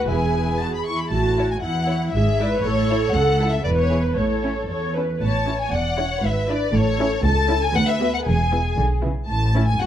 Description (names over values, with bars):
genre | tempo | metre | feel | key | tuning
quick classical-period movement for string orchestra | 118 BPM | 2/4 | straight | A major | A4 = 440 Hz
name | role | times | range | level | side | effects
rich studio violin section | melody | 0.0-9.9 s | A4 to C#6 | -25 LUFS | left 3 dB | none
rich studio violin section | second line | 0.0-9.9 s | C#4 to D5 | -28 LUFS | left 2 dB | none
rich studio viola section | accompaniment | 0.0-9.6 s | B3 to C#5 | -25 LUFS | right 1 dB | none
warm studio cello section | bass | 0.0-9.9 s | C#2 to D3 | -24 LUFS | right 1 dB | none
warm studio double bass section | bass | 0.0-9.9 s | E1 to D2 | -24 LUFS | right 1 dB | none
room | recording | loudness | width
moderate large studio reverb, RT60 1.3 s | dark, warm production | -18 LUFS | side -10 dB against mid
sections
0.0-5.2 A section; 5.2-9.9 A section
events
none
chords
0.1 E; 1.1 A5; 2.1 E/G#; 2.6 A; 3.1 A/C#; 3.6 E5; 4.2 A; 6.2 E7/G#; 6.7 A; 7.2 A/C#; 7.7 Bm/D; 8.3 E; 9.3 A